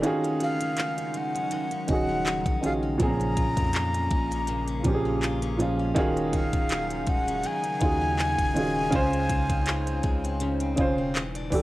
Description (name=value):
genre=contemporary R&B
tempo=81 BPM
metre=4/4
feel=swing 54% on 16ths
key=Eb dorian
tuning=A4 = 439 Hz
part: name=dark grand piano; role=accompaniment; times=0.0-11.6 s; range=Bb2 to C5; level=-27 LUFS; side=right 1 dB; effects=cassette tape
part: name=glassy FM pad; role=sustained chords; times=0.0-11.6 s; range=Db3 to F#5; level=-36 LUFS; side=equal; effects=ensemble chorus, built-in reverb, sidechain pumping, cassette tape
part: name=picked steel-string acoustic guitar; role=arpeggios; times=0.0-11.6 s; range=Bb2 to Gb4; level=-34 LUFS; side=left 3 dB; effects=cassette tape
part: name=long sustained 808-style bass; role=bass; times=0.0-11.6 s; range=Eb1 to F2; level=-32 LUFS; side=equal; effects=none
part: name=trap drum kit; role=drums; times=0.0-11.6 s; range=handclaps, hi-hat, kick drum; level=-28 LUFS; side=equal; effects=none
part: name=breathy jazz flute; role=melody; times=0.4-11.2 s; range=F5 to Bb5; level=-30 LUFS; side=left 1 dB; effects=cassette tape
room=light reverb, small room ambience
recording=home recording on cassette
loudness=-23 LUFS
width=side -17 dB against mid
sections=0.0-11.6 A section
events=break 0.0-1.5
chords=0.0 Ebm11; 3.0 Bbm7; 6.0 Ebm11; 8.9 Dbmaj7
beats=| 0.04 0.78 1.52 2.26 | 3.00 3.74 4.48 5.22 | 5.96 6.70 7.45 8.19 | 8.93 9.67 10.41 11.15